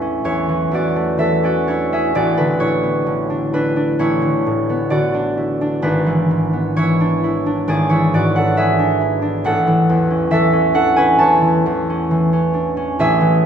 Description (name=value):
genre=classical, solo harp piece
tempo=66 BPM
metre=4/4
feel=uneven beats, rubato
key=A major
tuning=A4 = 440 Hz
part: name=concert harp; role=solo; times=0.0-13.5 s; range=G#1 to A5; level=-14 LUFS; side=equal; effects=none
room=wet recital hall reverb, RT60 1.5 s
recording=heard from further back in the room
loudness=-14 LUFS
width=side -8 dB against mid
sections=0.0-13.5 A section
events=none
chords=0.0 A; 2.1 Bm7/A; 5.8 E7/G#; 9.5 A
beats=0.24 1.19 | 2.13 3.04 3.98 4.89 | 5.82 6.74 7.67 8.57 | 9.45 10.31 11.20 12.12 | 13.01